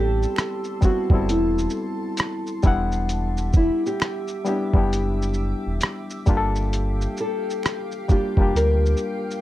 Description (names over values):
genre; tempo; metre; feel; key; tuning
lo-fi hip hop; 66 BPM; 4/4; swing 65% on 16ths; unclear; A4 = 440 Hz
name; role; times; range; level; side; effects
nylon-string guitar; melody; 0.0-9.4 s; D4 to Bb4; -26 LUFS; equal; low-pass filter
barky reed electric piano; accompaniment; 0.0-9.4 s; G3 to F#5; -26 LUFS; left 3 dB; overdrive, cassette tape, low-pass filter
granular cloud pad; sustained chords; 0.0-9.4 s; G4 to D6; -36 LUFS; right 1 dB; built-in reverb, low-pass filter
sub bass with octave; bass; 0.0-8.9 s; E1 to D2; -23 LUFS; equal; none
lo-fi sampler-style drum kit; drums; 0.2-9.4 s; hi-hat, kick drum, rim click, shaker; -20 LUFS; equal; none
finger snap; percussion; 0.4-7.9 s; none; -39 LUFS; right 5 dB; none
room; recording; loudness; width
light reverb; none; -20 LUFS; side -14 dB against mid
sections
0.0-9.4 A section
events
none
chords
0.0 Am7; 2.6 Em7; 6.3 Gm7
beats
0.36 1.27 2.18 | 3.09 4.00 4.91 5.82 | 6.72 7.63 8.54